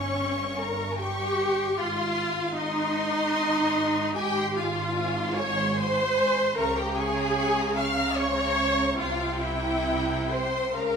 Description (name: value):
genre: classical, slow romantic movement for string orchestra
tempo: 75 BPM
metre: 3/4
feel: rubato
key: Ab major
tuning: A4 = 437 Hz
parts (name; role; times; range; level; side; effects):
- rich studio violin section; melody; 0.0-11.0 s; F5 to Db6; -34 LUFS; left 3 dB; none
- rich studio violin section; second line; 0.0-11.0 s; Db5 to F6; -32 LUFS; left 3 dB; none
- rich symphonic viola section; accompaniment; 0.0-11.0 s; Db4 to F5; -26 LUFS; equal; none
- rich studio double bass section; bass; 0.0-11.0 s; G1 to Db2; -36 LUFS; right 2 dB; none
- warm studio cello section; bass; 0.0-11.0 s; G2 to Db3; -33 LUFS; right 3 dB; none
room: wet recital hall reverb, RT60 1.7 s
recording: minimal, uncompressed stereo recording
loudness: -24 LUFS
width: side -6 dB against mid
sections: 0.0-11.0 A section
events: none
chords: 0.0 Gdim; 1.8 Ab; 6.6 Bbm/Db; 9.0 C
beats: 0.20 0.98 | 1.78 2.56 3.35 | 4.16 4.96 5.76 | 6.56 7.37 8.17 | 8.98 9.84 10.76